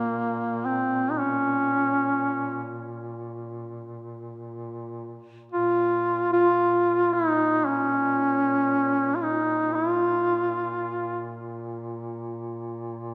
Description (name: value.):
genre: caucasian folk, Caucasian lament.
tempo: free time.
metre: none.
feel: none.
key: Bb minor.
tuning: A4 = 440 Hz.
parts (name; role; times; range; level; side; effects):
mellow duduk; melody; 0.0-11.3 s; Bb3 to F4; -24 LUFS; equal; none.
mellow duduk; drone; 0.0-13.1 s; Bb2; -37 LUFS; equal; none.
room: wet church reverb, RT60 3.1 s.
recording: none.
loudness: -25 LUFS.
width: mono.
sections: 0.0-13.1 A section.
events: none.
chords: none.